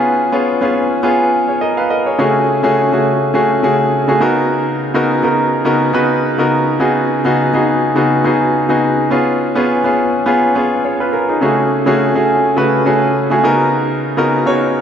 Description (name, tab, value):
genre	pop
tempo	104 BPM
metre	4/4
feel	swing 55% on 16ths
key	Db mixolydian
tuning	A4 = 439 Hz
part	clear concert grand piano	solo	0.0-14.8 s	Db3 to F5	-12 LUFS	equal	none
room	wet plate reverb, RT60 3.5 s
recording	dreamy mix soaked in reverb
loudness	-12 LUFS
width	side -8 dB against mid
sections	0.0-14.8 A section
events	none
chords	0.0 Db7; 2.2 Gbmadd9/Db; 4.2 Cbmaj7/Db; 6.8 Abm7/Db; 9.1 Db7; 11.4 Gbmadd9/Db; 13.4 Cbmaj7/Db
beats	0.46 1.04 1.61 | 2.19 2.77 3.34 3.92 | 4.50 5.07 5.65 6.23 | 6.80 7.38 7.96 8.54 | 9.11 9.69 10.27 10.84 | 11.42 12.00 12.57 13.15 | 13.73 14.30